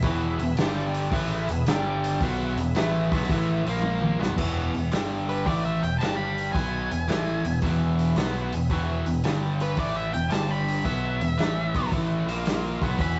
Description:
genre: blues rock power trio and southern rock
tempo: 111 BPM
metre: 4/4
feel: swing 68% on 8ths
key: unclear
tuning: A4 = 440 Hz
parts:
  - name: overdriven tonewheel organ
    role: sustained chords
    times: 0.0-13.2 s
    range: A#3 to G5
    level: -41 LUFS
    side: equal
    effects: none
  - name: biting overdriven guitar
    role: riff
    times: 0.0-13.2 s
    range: E2 to B3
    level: -30 LUFS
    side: equal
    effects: none
  - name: growling picked electric bass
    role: bass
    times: 0.0-13.2 s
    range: E1 to B1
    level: -31 LUFS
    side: equal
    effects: overdrive
  - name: vintage drum kit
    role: drums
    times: 0.0-13.2 s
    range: crash cymbal, hi-hat, kick drum, snare drum, toms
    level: -32 LUFS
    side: equal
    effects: none
  - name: octave-fuzz lead guitar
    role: melody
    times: 5.3-13.2 s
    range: B4 to B5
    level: -33 LUFS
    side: equal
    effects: distortion
room: moderate studio reverb, RT60 0.6 s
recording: rough rehearsal-room recording, nothing above 7.9 kHz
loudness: -26 LUFS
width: mono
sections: 0.0-4.4 A section; 4.4-13.2 B section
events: drum fill 3.8-4.4; lead electric guitar solo 4.4-13.2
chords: 0.0 E; 0.6 G5; 1.1 E; 1.7 G5; 2.2 E; 3.6 A#5; 4.1 B5; 4.4 E; 4.9 G5; 5.5 E; 6.0 G5; 6.5 E; 9.2 G5; 9.8 E; 10.3 G5; 10.9 E; 12.2 A#5

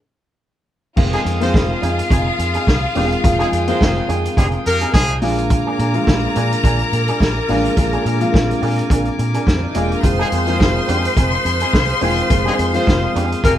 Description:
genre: disco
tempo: 106 BPM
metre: 4/4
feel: swing 56% on 16ths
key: F dorian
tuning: A4 = 437 Hz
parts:
  - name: clear symphonic string section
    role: second line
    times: 1.0-13.6 s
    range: C4 to C6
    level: -23 LUFS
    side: left 2 dB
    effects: none
  - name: dark baby grand piano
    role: accompaniment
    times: 1.0-13.6 s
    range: C3 to F4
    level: -21 LUFS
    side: left 1 dB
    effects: none
  - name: electric guitar with an envelope filter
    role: accompaniment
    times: 1.0-13.6 s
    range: Bb3 to Ab4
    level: -26 LUFS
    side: right 2 dB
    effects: none
  - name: bright tonewheel organ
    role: sustained chords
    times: 1.0-13.6 s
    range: Ab4 to Eb6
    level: -28 LUFS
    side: equal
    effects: overdrive, slow rotary speaker
  - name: vintage muted fingered electric bass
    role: bass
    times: 1.0-13.6 s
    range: E1 to Bb2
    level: -21 LUFS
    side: equal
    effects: none
  - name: vintage drum kit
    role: drums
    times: 1.0-13.6 s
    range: crash cymbal, hi-hat, kick drum, snare drum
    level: -18 LUFS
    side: equal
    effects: none
  - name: clear horn section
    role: stabs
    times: 1.1-5.2, 10.2-13.5 s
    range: F3 to C5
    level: -21 LUFS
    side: left 1 dB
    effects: none
room: moderate small room reverb, RT60 0.6 s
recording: band playing live in one room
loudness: -14 LUFS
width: side -11 dB against mid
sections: 1.0-13.6 A section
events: break 0.0-1.0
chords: 0.0 N.C.; 1.0 Fm7; 5.2 Bb7; 10.0 Fm7

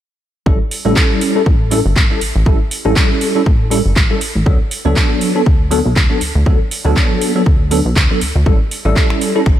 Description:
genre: filtered disco house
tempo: 120 BPM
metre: 4/4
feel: swing 56% on 16ths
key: unclear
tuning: A4 = 438 Hz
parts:
  - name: bell-like tine electric piano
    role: accompaniment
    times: 0.5-9.4 s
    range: F#3 to A4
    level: -17 LUFS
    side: equal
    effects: medium stereo tremolo, phaser, sidechain pumping, low-pass filter
  - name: plucky analog bass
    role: bass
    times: 0.5-9.6 s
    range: G1 to D2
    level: -16 LUFS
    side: equal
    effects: sidechain pumping, low-pass filter
  - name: electronic kick drum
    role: drums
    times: 0.5-9.6 s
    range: none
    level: -13 LUFS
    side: equal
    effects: small room reverb
  - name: house drum kit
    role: drums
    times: 0.7-9.6 s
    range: finger snaps, handclaps, hi-hat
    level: -20 LUFS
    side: right 1 dB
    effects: sidechain pumping on hats, small room reverb
room: light reverb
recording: none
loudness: -11 LUFS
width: side -12 dB against mid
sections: 0.5-9.6 A section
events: none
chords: 0.5 A7; 4.5 D6; 8.5 A7

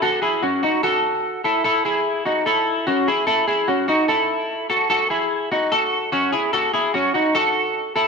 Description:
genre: indie pop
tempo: 147 BPM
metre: 4/4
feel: straight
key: unclear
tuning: A4 = 440 Hz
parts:
  - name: semi-hollow electric guitar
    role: solo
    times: 0.0-8.1 s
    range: C#4 to A4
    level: -18 LUFS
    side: equal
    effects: analog chorus
room: moderate echo chamber reverb, RT60 1.9 s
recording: none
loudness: -18 LUFS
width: side -4 dB against mid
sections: 0.0-8.1 A section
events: none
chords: 0.0 F#m

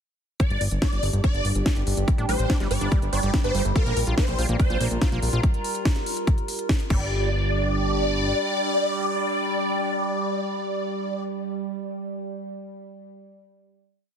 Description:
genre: psychedelic trance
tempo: 143 BPM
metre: 4/4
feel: straight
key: G minor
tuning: A4 = 440 Hz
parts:
  - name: swarming rave lead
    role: melody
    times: 0.4-11.2 s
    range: Bb4 to D5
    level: -27 LUFS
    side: left 1 dB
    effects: chorus, phaser, sidechain pumping, tape echo
  - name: overtone-sweeping drone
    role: sustained chords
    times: 1.1-11.3 s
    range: G3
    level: -32 LUFS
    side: right 3 dB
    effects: chorus, built-in reverb, sidechain pumping
  - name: electronic kick drum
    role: drums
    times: 0.4-7.0 s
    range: none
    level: -22 LUFS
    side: equal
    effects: overdrive
  - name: techno drum kit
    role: drums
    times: 0.4-7.0 s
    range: crash cymbal, hi-hat, snare drum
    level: -31 LUFS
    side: equal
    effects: overdrive
  - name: warbly tape-like pad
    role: texture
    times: 1.0-11.2 s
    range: D4 to Bb5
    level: -33 LUFS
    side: right 1 dB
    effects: chorus, built-in reverb, sidechain pumping
  - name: fat analog bass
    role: bass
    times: 0.5-8.3 s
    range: G1 to Bb1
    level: -25 LUFS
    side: equal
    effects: none
  - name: overdriven acid bass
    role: riff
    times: 2.2-7.3 s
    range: G3 to F4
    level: -34 LUFS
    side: moving between left 2 dB and right 5 dB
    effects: distortion, auto-pan, sidechain pumping, dub echo
room: light reverb, digital ambience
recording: dense, heavily limited modern master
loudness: -22 LUFS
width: side -8 dB against mid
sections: 0.4-7.1 groove; 7.1-10.5 final note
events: none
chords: 0.4 G5; 3.8 Bb5; 6.9 G5

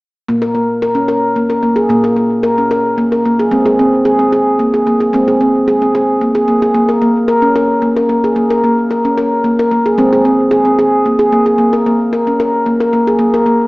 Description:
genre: world meditative, meditative tuned percussion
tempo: 111 BPM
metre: 3/4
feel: straight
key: unclear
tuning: A4 = 440 Hz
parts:
  - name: handpan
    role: solo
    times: 0.3-13.7 s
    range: Bb2 to Bb4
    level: -10 LUFS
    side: equal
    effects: diffuse ambient delay
room: moderate recital hall reverb, RT60 1.4 s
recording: small speaker sound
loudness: -10 LUFS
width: side -22 dB against mid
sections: 0.3-13.2 A section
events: none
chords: 0.3 N.C.; 3.5 Ab; 6.8 N.C.; 10.0 Ab; 11.6 N.C.

